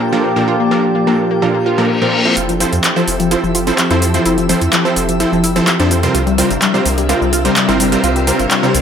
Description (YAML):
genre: progressive house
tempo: 127 BPM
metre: 4/4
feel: straight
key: F major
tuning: A4 = 439 Hz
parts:
  - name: expressive portamento lead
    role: melody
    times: 0.0-2.3 s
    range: G4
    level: -19 LUFS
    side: right 1 dB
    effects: wide subtle chorus, tape echo
  - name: lush unison pad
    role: sustained chords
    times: 0.0-8.8 s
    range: Bb2 to A5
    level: -19 LUFS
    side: right 1 dB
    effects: chorus
  - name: analog pluck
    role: arpeggios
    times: 0.0-8.7 s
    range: F3 to F4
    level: -18 LUFS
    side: left 3 dB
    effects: chorus, tape echo
  - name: big-room dance drum kit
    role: drums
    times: 0.0-8.8 s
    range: cabasa, handclaps, hi-hat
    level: -18 LUFS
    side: equal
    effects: overdrive, low-pass filter on perc, low-pass filter on hats, low-pass filter on snare
  - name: twinkling granular texture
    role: texture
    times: 0.0-8.8 s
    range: E5 to G5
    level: -28 LUFS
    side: left 2 dB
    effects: built-in reverb
  - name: supersaw stab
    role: stabs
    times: 0.1-8.8 s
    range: Bb2 to C5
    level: -18 LUFS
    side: right 2 dB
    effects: tape echo
  - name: reverse cymbal and riser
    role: sound effects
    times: 1.7-8.8 s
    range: none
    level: -24 LUFS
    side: left 3 dB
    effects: none
  - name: round analog bass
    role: bass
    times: 2.4-8.8 s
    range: F1 to F2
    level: -19 LUFS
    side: equal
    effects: none
room: moderate digital room reverb, RT60 1.2 s, digital ambience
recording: none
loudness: -12 LUFS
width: side -8 dB against mid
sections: 0.0-2.4 A section; 2.4-8.8 B section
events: filter sweep on analog synth pad 0.0-2.4; reverse cymbal 1.7-2.4; build-up 2.4-8.8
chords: 0.0 Bbmaj7; 2.4 Fmaj7; 6.1 C7sus4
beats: 0.01 | 0.48 0.95 1.42 1.90 | 2.37 2.84 3.31 3.78 | 4.26 4.73 5.20 5.67 | 6.15 6.62 7.09 7.56 | 8.04 8.51